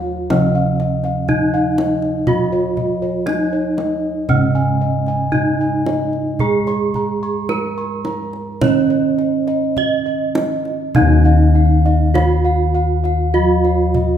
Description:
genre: Javanese gamelan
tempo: 50-61 BPM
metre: 4/4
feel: straight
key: Eb slendro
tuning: A4 = 440 Hz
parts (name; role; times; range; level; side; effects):
- gamelan-type bronze metallophone; melody; 0.0-14.2 s; Db4-40c to Eb5; -20 LUFS; right 1 dB; none
- gamelan-type bronze metallophone; accompaniment; 0.0-14.2 s; Db3-40c to Db4-40c; -21 LUFS; right 6 dB; none
- gamelan-type bossed gongs; arpeggios; 0.0-14.2 s; Db5-40c to Db6-40c; -23 LUFS; left 5 dB; none
- gamelan-type bossed gongs; bass; 0.0-14.2 s; Eb2 to Ab4-20c; -20 LUFS; left 2 dB; none
- kendang; percussion; 0.3-14.2 s; none; -23 LUFS; right 1 dB; none
- gamelan-type bronze metallophone; arpeggios; 11.0-14.2 s; Eb5 to F5+40c; -26 LUFS; right 6 dB; none
room: wet recital hall reverb, RT60 1.6 s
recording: minimal, uncompressed stereo recording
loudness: -14 LUFS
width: side -9 dB against mid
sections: 0.0-10.9 A section; 10.9-14.2 B section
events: none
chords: none

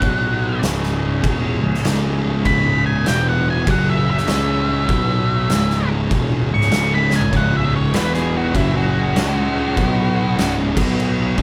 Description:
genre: stoner and doom metal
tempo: 98 BPM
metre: 4/4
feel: swing 62% on 8ths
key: C# minor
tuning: A4 = 443 Hz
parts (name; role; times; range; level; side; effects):
- octave-fuzz lead guitar; melody; 0.0-10.6 s; E4 to C#6; -24 LUFS; equal; distortion
- mellow tonewheel organ; sustained chords; 0.0-11.4 s; E3 to C#5; -32 LUFS; equal; none
- thick fuzz guitar; riff; 0.0-11.4 s; C#2 to C#4; -26 LUFS; equal; none
- thick fuzz guitar; riff; 0.0-11.4 s; C#2 to C#4; -26 LUFS; equal; distortion
- fuzz picked electric bass; bass; 0.0-11.4 s; C#1 to C#2; -26 LUFS; equal; overdrive
- oversized low-tuned drum kit; drums; 0.0-11.4 s; crash cymbal, kick drum, snare drum, toms; -24 LUFS; equal; none
- crunchy overdriven guitar; riff; 7.3-11.4 s; C#2 to C#4; -28 LUFS; equal; none
room: light reverb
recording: band playing live in one room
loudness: -18 LUFS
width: mono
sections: 0.0-11.4 A section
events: lead electric guitar solo 0.0-11.4; drum fill 7.0-7.3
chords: 0.0 B5; 0.6 C#m; 3.1 E5; 3.7 F#5; 4.3 C#m; 4.9 B5; 5.5 C#m; 7.9 E5; 8.6 F#5; 9.2 C#5; 9.8 B5; 10.4 C#5; 10.7 B5

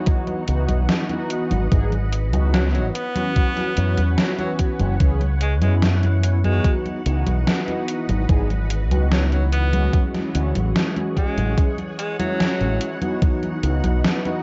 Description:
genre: vaporwave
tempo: 73 BPM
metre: 4/4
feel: straight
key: C# minor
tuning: A4 = 439 Hz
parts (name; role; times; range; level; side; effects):
- mellow synth brass; accompaniment; 0.0-14.4 s; E3 to G#4; -29 LUFS; equal; subtle chorus, analog delay
- soft string machine; sustained chords; 0.0-14.4 s; E3 to F#5; -37 LUFS; equal; ensemble chorus
- electronic kick drum; drums; 0.1-13.4 s; none; -21 LUFS; equal; overdrive
- gated 80s digital drum machine; drums; 0.1-14.4 s; congas, hi-hat, snare drum; -27 LUFS; equal; gated reverb, gated reverb snare, overdrive
- fingered electric bass with an envelope filter; bass; 0.5-14.0 s; F#1 to F#2; -22 LUFS; equal; none
- edgy tenor saxophone; melody; 2.5-13.0 s; F#3 to B3; -32 LUFS; equal; tape echo
room: little or no reverb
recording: cassette tape, nothing above 7.8 kHz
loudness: -21 LUFS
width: mono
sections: 0.0-14.4 A section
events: none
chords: 0.1 C#m11; 2.9 F#7sus4; 6.6 C#m11; 9.9 Dmaj9#11 (rootless); 13.2 C#m11

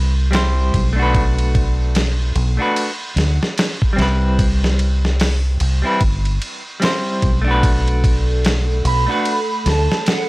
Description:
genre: trip hop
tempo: 74 BPM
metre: 4/4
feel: swing 60% on 16ths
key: B phrygian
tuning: A4 = 440 Hz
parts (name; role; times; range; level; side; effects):
- deep dub fingered electric bass; bass; 0.0-9.9 s; G1 to D2; -17 LUFS; equal; none
- semi-hollow electric guitar; accompaniment; 0.3-9.4 s; G3 to C5; -22 LUFS; equal; tremolo, tape echo
- dusty soul sampler-style drum kit; drums; 0.3-10.3 s; hi-hat, kick drum, ride cymbal, snare drum; -20 LUFS; equal; small room ambience
- dark analog pad; sustained chords; 7.6-10.3 s; A4; -25 LUFS; right 2 dB; chorus
- mellow concert flute; melody; 8.9-10.3 s; F#5 to B5; -21 LUFS; right 3 dB; tape echo
room: little or no reverb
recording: dry, gritty hardware recording, vinyl crackle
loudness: -15 LUFS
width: side -21 dB against mid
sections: 0.0-10.3 A section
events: none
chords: 0.0 Cmaj7; 7.6 Bm7

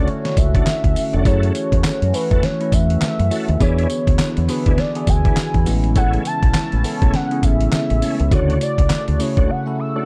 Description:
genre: R&B, new jack swing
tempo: 102 BPM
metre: 4/4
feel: swing 60% on 16ths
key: unclear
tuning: A4 = 440 Hz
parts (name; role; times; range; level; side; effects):
- warm velvety synth lead; melody; 0.0-10.1 s; B4 to E6; -27 LUFS; equal; chorus
- bell-like tine electric piano; accompaniment; 0.0-10.1 s; C#3 to B4; -27 LUFS; equal; phaser
- chorused pulse-width pad; sustained chords; 0.0-10.1 s; C#3 to F#4; -29 LUFS; equal; none
- tonewheel organ; stabs; 0.0-10.1 s; A3 to A4; -31 LUFS; equal; chorus vibrato, fast rotary speaker
- deep dub fingered electric bass; bass; 0.0-9.5 s; E#1 to F#2; -21 LUFS; equal; none
- dusty soul sampler-style drum kit; drums; 0.1-9.5 s; handclaps, hi-hat, kick drum, snare drum, tambourine; -21 LUFS; equal; none
room: digital ambience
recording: dark, warm production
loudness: -18 LUFS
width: mono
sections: 0.0-10.1 A section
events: break 9.5-10.1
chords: 0.0 Dmaj7; 1.3 F#m7; 3.6 E7; 5.7 Amaj7; 8.3 Dmaj7

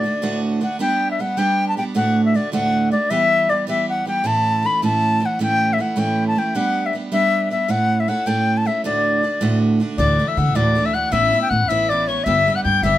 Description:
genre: celtic folk, Celtic jig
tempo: 105 BPM (dotted quarters)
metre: 6/8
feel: straight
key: D major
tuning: A4 = 441 Hz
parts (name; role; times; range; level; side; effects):
- bright reedy wooden flute; melody; 0.0-13.0 s; C#5 to B5; -19 LUFS; left 2 dB; none
- picked steel-string acoustic guitar; accompaniment; 0.0-13.0 s; D2 to A4; -20 LUFS; right 2 dB; none
- bright reedy tin whistle; second line; 10.0-13.0 s; C#6 to G6; -23 LUFS; left 8 dB; none
- upright bass; bass; 10.0-13.0 s; G1 to D3; -22 LUFS; left 1 dB; none
room: light reverb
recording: close, detailed microphones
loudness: -16 LUFS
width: side -13 dB against mid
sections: 0.8-10.0 A section; 10.0-13.0 B section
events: none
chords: 0.0 D; 0.8 G; 2.0 D; 3.1 Em; 4.2 A; 6.5 G; 7.7 A; 8.8 D; 10.0 Dadd9; 11.1 Aadd9; 12.3 G

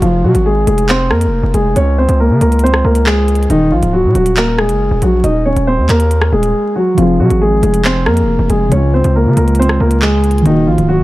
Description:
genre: hip hop, drill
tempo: 138 BPM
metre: 4/4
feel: half-time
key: F phrygian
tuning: A4 = 439 Hz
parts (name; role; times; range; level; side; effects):
- dark concert grand piano; melody; 0.0-11.0 s; Eb3 to Eb5; -13 LUFS; equal; none
- distorted 808-style bass; bass; 0.0-11.0 s; Db1 to Db3; -13 LUFS; equal; distortion
- drill drum kit; drums; 0.0-10.9 s; handclaps, hi-hat, rim click; -20 LUFS; equal; none
- muted felt-like synth keys; accompaniment; 6.9-11.0 s; Db3 to Ab4; -15 LUFS; equal; chorus
room: little or no reverb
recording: dark, warm production, vinyl crackle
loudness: -10 LUFS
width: side -17 dB against mid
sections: 0.0-11.0 A section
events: break 6.5-7.0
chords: 0.0 Fm; 1.8 Db5; 3.5 Ebm; 7.0 Fm; 8.7 Db; 10.5 Ebm

